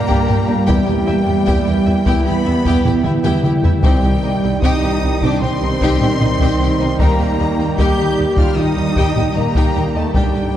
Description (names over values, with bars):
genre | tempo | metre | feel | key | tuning
cinematic, hybrid orchestral and electronic film score | 76 BPM | 4/4 | straight | unclear | A4 = 440 Hz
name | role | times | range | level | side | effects
rich symphonic violin section | melody | 0.0-10.6 s | G5 to G6 | -26 LUFS | left 4 dB | none
bright trombone section | sustained chords | 0.0-10.6 s | Bb2 to G3 | -26 LUFS | right 2 dB | none
granular cloud pad | sustained chords | 0.0-10.6 s | G3 to G5 | -22 LUFS | equal | built-in reverb
warm French horn section | sustained chords | 0.0-10.6 s | G3 to G4 | -24 LUFS | left 2 dB | none
warm symphonic cello section | bass | 0.0-10.6 s | G3 to G4 | -22 LUFS | right 2 dB | none
clear grand piano | texture | 0.0-10.2 s | G4 to Bb5 | -31 LUFS | left 1 dB | none
rich studio violin section | second line | 0.1-10.6 s | D4 to G5 | -26 LUFS | left 3 dB | none
rich chamber viola section | accompaniment | 0.1-10.6 s | G3 to E4 | -24 LUFS | equal | none
warm symphonic double bass section | bass | 0.1-10.6 s | C2 to G2 | -21 LUFS | right 2 dB | none
taiko ensemble | drums | 0.1-10.6 s | none | -19 LUFS | left 1 dB | none
room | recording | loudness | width
wet concert hall reverb, RT60 2.5 s | dark, warm production | -13 LUFS | side -11 dB against mid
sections
0.0-10.6 A section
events
drum fill 3.0-3.8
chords
0.0 Gm; 0.7 Em; 3.8 Cm; 7.0 Eb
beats
| 0.68 1.47 2.25 3.04 | 3.83 4.62 5.41 6.20 | 6.99 7.78 8.57 9.36 | 10.15